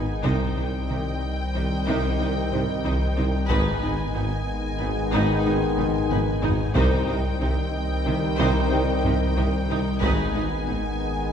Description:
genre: cinematic, hybrid orchestral and electronic film score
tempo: 92 BPM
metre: 5/4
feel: straight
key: C harmonic minor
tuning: A4 = 440 Hz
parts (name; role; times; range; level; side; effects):
- rich symphonic violin section; melody; 0.0-11.3 s; G5 to Ab5; -34 LUFS; left 2 dB; none
- mellow trombone section; sustained chords; 0.0-11.3 s; Eb3 to Ab3; -30 LUFS; right 3 dB; none
- warm French horn section; sustained chords; 0.0-11.3 s; Cb4 to Eb4; -32 LUFS; left 5 dB; none
- warm analog pad; sustained chords; 0.0-11.3 s; G3 to Eb5; -34 LUFS; left 1 dB; chorus
- soft round pluck; arpeggios; 0.0-10.9 s; C3 to Ab4; -35 LUFS; left 4 dB; none
- pure sine sub bass; bass; 0.0-11.3 s; Ab1 to C2; -29 LUFS; equal; none
- warm tuba; bass; 0.0-10.8 s; Ab1 to C2; -31 LUFS; right 2 dB; none
- rich symphonic violin section; second line; 0.2-10.8 s; Cb5 to C5; -35 LUFS; left 2 dB; none
- warm symphonic viola section; accompaniment; 0.2-10.8 s; Eb4; -32 LUFS; equal; none
- rich symphonic cello section; bass; 0.2-10.8 s; Ab2 to C3; -32 LUFS; right 2 dB; none
- rich symphonic double bass section; bass; 0.2-10.7 s; Ab1 to C2; -30 LUFS; right 1 dB; none
- taiko ensemble; drums; 0.2-10.6 s; none; -30 LUFS; equal; none
room: wet scoring stage reverb, RT60 1.9 s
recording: heard from further back in the room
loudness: -21 LUFS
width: side -8 dB against mid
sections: 0.0-11.3 A section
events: drum fill 5.8-6.8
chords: 0.2 Cm; 3.5 Abm; 6.8 Cm; 10.0 Abm

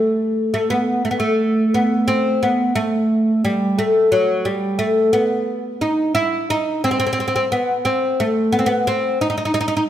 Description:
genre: arabic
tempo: 59 BPM (dotted quarters)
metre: 6/8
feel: straight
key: A maqam nikriz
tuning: A4 = 441 Hz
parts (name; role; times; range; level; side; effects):
- oud; solo; 0.0-9.8 s; F#3 to E4; -16 LUFS; equal; none
room: moderate scoring stage reverb, RT60 1.6 s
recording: none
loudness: -16 LUFS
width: side -11 dB against mid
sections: 0.0-3.1 A section; 3.1-9.9 A section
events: none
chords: none

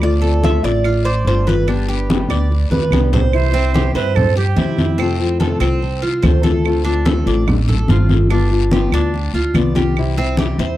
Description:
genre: latin, Cuban son and guajira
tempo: 145 BPM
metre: 4/4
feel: straight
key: C major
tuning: A4 = 438 Hz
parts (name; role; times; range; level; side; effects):
- Cuban tres; melody; 0.0-2.9 s; B4 to E5; -24 LUFS; right 3 dB; none
- nylon-string guitar; accompaniment; 0.0-10.8 s; C3 to G4; -20 LUFS; left 4 dB; none
- Cuban tres; arpeggios; 0.0-10.8 s; C4 to D5; -23 LUFS; right 4 dB; tape echo
- upright bass; bass; 0.0-10.8 s; G1 to G2; -17 LUFS; equal; none
- claves; percussion; 0.0-10.2 s; none; -28 LUFS; right 17 dB; none
- congas; percussion; 0.0-10.8 s; none; -20 LUFS; left 1 dB; none
- guiro; percussion; 0.0-10.8 s; none; -32 LUFS; left 14 dB; none
- breathy bright jazz flute; second line; 3.3-5.2 s; G4 to C5; -23 LUFS; right 10 dB; none
room: light reverb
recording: dry, close 1970s-style studio recording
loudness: -13 LUFS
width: side -14 dB against mid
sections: 0.0-3.3 A section; 3.3-10.8 B section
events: drum fill 2.7-3.3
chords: 0.0 Dm7; 1.7 G; 3.3 C; 5.0 F; 6.6 Dm7; 8.3 G7; 10.0 C

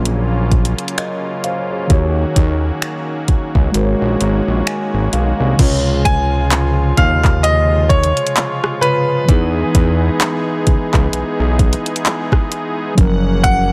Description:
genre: contemporary R&B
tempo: 65 BPM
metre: 4/4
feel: swing 58% on 16ths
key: Db major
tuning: A4 = 440 Hz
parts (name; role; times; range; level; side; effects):
- mellow tine electric piano; accompaniment; 0.0-13.7 s; C3 to Ab5; -23 LUFS; equal; none
- pipe organ, strings celeste; sustained chords; 0.0-13.7 s; Db3 to Gb5; -26 LUFS; equal; sidechain pumping
- fat analog bass; bass; 0.0-13.7 s; Gb1 to E2; -19 LUFS; equal; none
- smooth R&B drum kit; drums; 0.1-13.7 s; crash cymbal, finger snaps, handclaps, hi-hat, kick drum, rim click; -17 LUFS; equal; none
- clear baby grand piano; melody; 6.1-13.7 s; Cb5 to Ab5; -21 LUFS; equal; tape echo
room: little or no reverb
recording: none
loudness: -16 LUFS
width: mono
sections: 0.0-5.6 A section; 5.6-13.7 B section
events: kick muted 3.7-5.6; tine electric piano fill 4.2-5.6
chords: 0.0 Gbmaj7; 1.9 Ebm7; 3.7 Ab9sus4; 5.6 Dbmaj7; 9.3 Emaj7; 13.0 Gbmaj7

